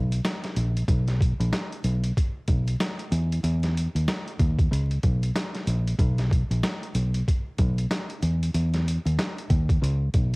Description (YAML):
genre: hip hop, boom-bap hip-hop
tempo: 94 BPM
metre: 4/4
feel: swing 61% on 16ths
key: unclear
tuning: A4 = 439 Hz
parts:
  - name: fingered electric bass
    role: bass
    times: 0.0-10.4 s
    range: A#1 to E2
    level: -23 LUFS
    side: equal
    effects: none
  - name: boom bap sampler-style drum kit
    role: drums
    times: 0.1-10.4 s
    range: hi-hat, kick drum, snare drum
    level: -26 LUFS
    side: equal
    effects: cassette tape
room: little or no reverb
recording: home recording on cassette, vinyl crackle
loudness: -22 LUFS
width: side -30 dB against mid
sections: 0.0-10.4 A section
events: none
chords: none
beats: 0.24 | 0.88 1.52 2.16 2.80 | 3.44 4.08 4.71 5.35 | 5.99 6.63 7.27 7.91 | 8.54 9.18 9.82